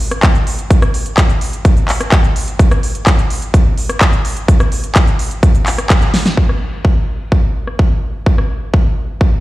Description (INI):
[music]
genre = EDM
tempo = 127 BPM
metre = 4/4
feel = straight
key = none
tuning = none
[part]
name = big-room dance drum kit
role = drums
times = 0.0-8.5 s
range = crash cymbal, handclaps, hi-hat, rim click, snare drum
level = -18 LUFS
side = equal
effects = low-pass filter on hats, low-pass filter on snare, low-pass filter on cymbals
[part]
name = electronic kick drum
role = drums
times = 0.2-9.3 s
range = none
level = -11 LUFS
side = equal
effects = overdrive
[sound]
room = digital ambience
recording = played on a big sound system in a bare room, large studio reverb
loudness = -11 LUFS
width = side -17 dB against mid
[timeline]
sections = 0.0-6.4 A section; 6.4-9.4 B section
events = drop 0.0-6.4; band accent 5.9; drum fill 6.1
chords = none